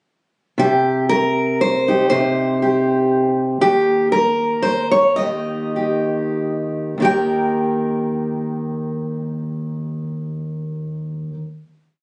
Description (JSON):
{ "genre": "folk, solo fingerstyle acoustic guitar", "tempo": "91-119 BPM", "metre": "3/4", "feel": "swing 55% on 8ths", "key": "Eb major", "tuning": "A4 = 440 Hz", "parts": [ { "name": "fingerpicked steel-string acoustic guitar", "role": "solo", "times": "0.6-11.4 s", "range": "Eb2 to G5", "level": "-19 LUFS", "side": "equal", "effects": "none" } ], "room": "light reverb", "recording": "recorded on a phone in the room, club reverb, compression, nothing above 10.3 kHz", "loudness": "-19 LUFS", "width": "mono", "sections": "0.6-7.0 A section; 7.0-10.9 final chord", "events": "slowing down 3.6-7.0", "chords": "0.6 Cm; 3.6 N.C.; 5.2 Eb", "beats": "| 0.58 1.09 1.60 | 2.10 2.61 3.12 | 3.62 4.13 4.65 | 5.19 5.75 6.34 | 6.97 7.63 8.29 | 8.95 9.60 10.26" }